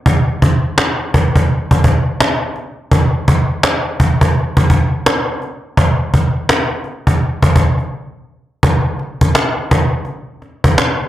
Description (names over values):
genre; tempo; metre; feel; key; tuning
hip hop; 84 BPM; 4/4; swing 62% on 16ths; none; none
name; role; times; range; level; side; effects
cajon; drums; 0.1-11.0 s; none; -12 LUFS; equal; none
room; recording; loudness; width
light reverb; dark, warm production; -12 LUFS; side -14 dB against mid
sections
0.0-8.6 A section; 8.6-11.1 B section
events
break 7.9-8.6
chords
none